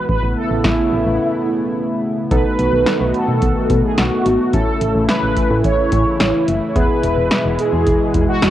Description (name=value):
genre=synth-pop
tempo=108 BPM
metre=4/4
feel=straight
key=unclear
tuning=A4 = 441 Hz
part: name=mellow synth brass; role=melody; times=0.0-8.5 s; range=E4 to C#5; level=-20 LUFS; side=right 1 dB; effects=chorus, phaser, cassette tape
part: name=chorused pulse-width pad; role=sustained chords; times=0.0-8.5 s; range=B2 to F#4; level=-19 LUFS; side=equal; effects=cassette tape
part: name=solid FM bass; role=bass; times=0.1-8.5 s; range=E1 to B2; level=-20 LUFS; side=equal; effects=none
part: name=electro analog drum machine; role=drums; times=0.1-8.5 s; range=hi-hat, kick drum, snare drum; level=-19 LUFS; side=equal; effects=cassette tape
part: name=warm analog keys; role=accompaniment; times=2.3-8.5 s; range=B3 to A4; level=-24 LUFS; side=right 1 dB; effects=chorus, cassette tape
room=moderate spring reverb, RT60 2.1 s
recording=home recording on cassette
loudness=-14 LUFS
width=side -12 dB against mid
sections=0.0-2.3 A section; 2.3-8.5 B section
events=break 1.2-2.3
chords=0.1 Aadd9; 2.3 B7; 4.5 A; 6.8 E